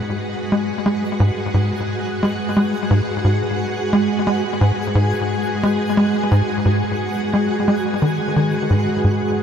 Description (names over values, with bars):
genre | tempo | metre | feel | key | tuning
ambient, sequencer-driven space music | 88 BPM | 4/4 | straight | G# minor | A4 = 440 Hz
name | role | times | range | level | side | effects
string machine, full ensemble | sustained chords | 0.0-9.4 s | G#3 to F#5 | -22 LUFS | equal | ensemble chorus
twinkling granular texture | texture | 0.0-9.4 s | B3 to B5 | -28 LUFS | right 1 dB | built-in reverb, analog chorus
tight sequencer bass | riff | 0.5-9.2 s | G#2 to G#3 | -18 LUFS | equal | lush chorus, ping-pong delay
room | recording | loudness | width
wet huge ambient reverb, RT60 7.8 s | dreamy mix soaked in reverb | -16 LUFS | side -8 dB against mid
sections
0.0-9.4 A section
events
none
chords
0.0 G#m7